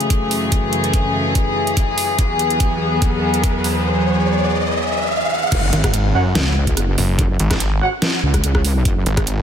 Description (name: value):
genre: heavy wobble dubstep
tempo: 144 BPM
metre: 4/4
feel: swing 53% on 16ths, half-time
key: F# minor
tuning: A4 = 437 Hz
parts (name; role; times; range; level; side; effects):
- rich chamber string section; sustained chords; 0.0-5.5 s; E2 to G#4; -18 LUFS; left 1 dB; sidechain pumping
- dubstep drum kit; drums; 0.0-9.4 s; crash cymbal, hi-hat, rim click, snare drum; -22 LUFS; right 1 dB; high-pass filter on hats, high-pass filter on snare, high-pass filter on cymbals, high-pass filter on room
- riser and impact; sound effects; 1.1-7.2 s; none; -24 LUFS; equal; none
- electronic kick drum; drums; 0.1-9.2 s; none; -18 LUFS; equal; none
- wobble bass; bass; 5.5-9.0 s; F#1 to C#2; -18 LUFS; equal; chorus, overdrive
- snarling distorted saw bass; bass; 5.7-9.4 s; F#1 to F#2; -18 LUFS; equal; distortion, overdrive
- dark brass ensemble; stabs; 6.1-7.9 s; F#4 to F#5; -25 LUFS; right 3 dB; ping-pong delay
room: moderate huge ambient reverb, RT60 4.3 s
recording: dreamy mix soaked in reverb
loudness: -15 LUFS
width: side -8 dB against mid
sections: 0.0-5.5 A section; 5.5-9.4 B section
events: build-up 0.0-5.5; riser 1.1-5.5; drum fill 2.2-3.9; drop 5.5-9.4; impact 5.5-7.2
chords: 0.0 F#m7; 2.2 Eadd9; 5.5 F#5